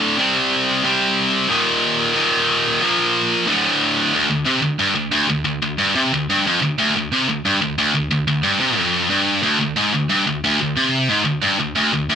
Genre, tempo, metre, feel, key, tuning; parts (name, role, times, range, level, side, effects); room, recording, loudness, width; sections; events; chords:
metal; 181 BPM; 4/4; straight; D phrygian; A4 = 440 Hz
high-gain distorted guitar; solo; 0.0-12.2 s; D2 to C4; -15 LUFS; equal; distortion
moderate studio reverb, RT60 0.6 s; rough home demo mix; -15 LUFS; side -7 dB against mid
0.0-4.1 A section; 4.1-9.4 B section; 9.4-12.2 C section
0.2 C5; 1.5 Eb5; 2.8 Bb5; 3.5 D5; 4.1 N.C.